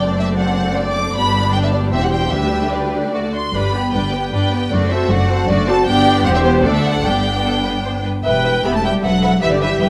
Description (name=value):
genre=quick classical-period movement for string orchestra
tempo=154 BPM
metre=3/4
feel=rubato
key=G major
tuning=A4 = 438 Hz
part: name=warm symphonic violin section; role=melody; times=0.0-9.9 s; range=C5 to D6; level=-23 LUFS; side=equal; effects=none
part: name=clear symphonic violin section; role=second line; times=0.0-9.9 s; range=D4 to E5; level=-24 LUFS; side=equal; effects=none
part: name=clear symphonic viola section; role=accompaniment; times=0.0-9.9 s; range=G3 to B4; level=-23 LUFS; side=equal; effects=none
part: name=rich symphonic double bass section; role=bass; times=0.0-9.9 s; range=E1 to D2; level=-24 LUFS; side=equal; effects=none
part: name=warm symphonic cello section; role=bass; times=0.0-9.9 s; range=D2 to B3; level=-24 LUFS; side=equal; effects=none
room=moderate recital hall reverb, RT60 1.6 s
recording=none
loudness=-17 LUFS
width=mono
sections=0.0-8.3 A section; 8.3-9.9 B section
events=none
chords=0.0 D7/F#; 1.2 G; 1.9 C/E; 2.3 G/D; 3.1 D; 3.5 G; 4.7 D7/F#; 5.9 G; 6.2 C/E; 6.6 D; 7.0 G; 8.3 Em